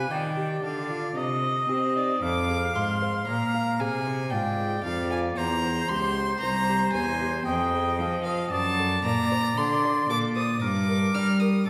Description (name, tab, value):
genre	classical, baroque-style sonata movement with continuo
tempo	57 BPM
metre	3/4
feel	straight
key	G minor from 8.5 s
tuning	A4 = 440 Hz
part	rich violin	melody	0.0-11.7 s	D5 to F6	-32 LUFS	equal	none
part	clear oboe	second line	0.0-11.7 s	A4 to F5	-32 LUFS	equal	none
part	lute	accompaniment	0.0-11.7 s	E2 to F5	-36 LUFS	equal	none
part	rich cello	bass	0.0-11.7 s	C2 to C4	-30 LUFS	equal	none
room	wet scoring stage reverb, RT60 1.6 s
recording	heard from further back in the room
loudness	-26 LUFS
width	mono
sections	0.0-11.7 A section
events	none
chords	0.0 G7(no3); 1.2 Cm; 2.2 Fm; 5.4 C; 7.5 Fm; 8.5 D7/F#; 10.6 Gm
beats	0.11 1.17 | 2.23 3.28 4.33 | 5.37 6.42 7.46 | 8.51 9.56 10.62 | 11.67